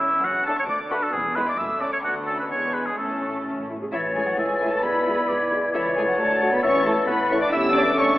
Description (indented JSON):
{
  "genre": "quick classical-period movement for symphony orchestra",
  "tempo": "133 BPM",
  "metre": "2/4",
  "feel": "straight",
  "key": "A major",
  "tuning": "A4 = 440 Hz",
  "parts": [
    { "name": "muted studio violin section", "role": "melody", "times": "0.0-8.2 s", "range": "E5 to E6", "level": "-28 LUFS", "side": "left 1 dB", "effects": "none" },
    { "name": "clear oboe", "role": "second line", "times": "0.0-8.2 s", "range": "E4 to F#5", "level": "-25 LUFS", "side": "equal", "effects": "none" },
    { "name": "muted studio violin section", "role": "second line", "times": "0.0-8.1 s", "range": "G#3 to E5", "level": "-30 LUFS", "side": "left 1 dB", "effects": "none" },
    { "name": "muted studio viola section", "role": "accompaniment", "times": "0.0-8.2 s", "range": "G#3 to A4", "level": "-31 LUFS", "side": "right 1 dB", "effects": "none" },
    { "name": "muted studio cello section", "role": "bass", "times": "0.0-8.2 s", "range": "D2 to E4", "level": "-31 LUFS", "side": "equal", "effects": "none" },
    { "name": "muted studio double bass section", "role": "bass", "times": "0.0-8.2 s", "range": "E1 to D2", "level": "-38 LUFS", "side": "right 1 dB", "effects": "none" },
    { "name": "timpani", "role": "percussion", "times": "1.1-3.9 s", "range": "E2 to A2", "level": "-46 LUFS", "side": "equal", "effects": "none" },
    { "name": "dark clarinet", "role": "second line", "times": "3.9-7.8 s", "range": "C#5 to D5", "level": "-28 LUFS", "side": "left 1 dB", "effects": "none" },
    { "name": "small flute group", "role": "second line", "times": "3.9-7.9 s", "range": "G#6 to A6", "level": "-29 LUFS", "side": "left 2 dB", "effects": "none" },
    { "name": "mellow bassoon", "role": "accompaniment", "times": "3.9-7.8 s", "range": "E3 to G3", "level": "-27 LUFS", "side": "equal", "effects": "none" },
    { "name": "mellow French horn section", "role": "sustained chords", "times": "4.2-8.2 s", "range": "G#3 to F#4", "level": "-29 LUFS", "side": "left 2 dB", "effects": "none" }
  ],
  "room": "wet scoring stage reverb, RT60 2.0 s",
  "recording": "telephone sound",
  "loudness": "-20 LUFS",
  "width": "side -16 dB against mid",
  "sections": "0.0-3.9 A section; 3.9-8.2 B section",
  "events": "timpani fill 3.0-3.9",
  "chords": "0.2 D/F#; 0.7 D; 1.1 E; 1.6 F#m; 2.0 Bm7/D; 2.5 E7; 3.0 A; 4.4 A/C#; 4.8 E7/B; 5.7 A/C#; 6.2 D; 6.6 A; 7.5 A7/E"
}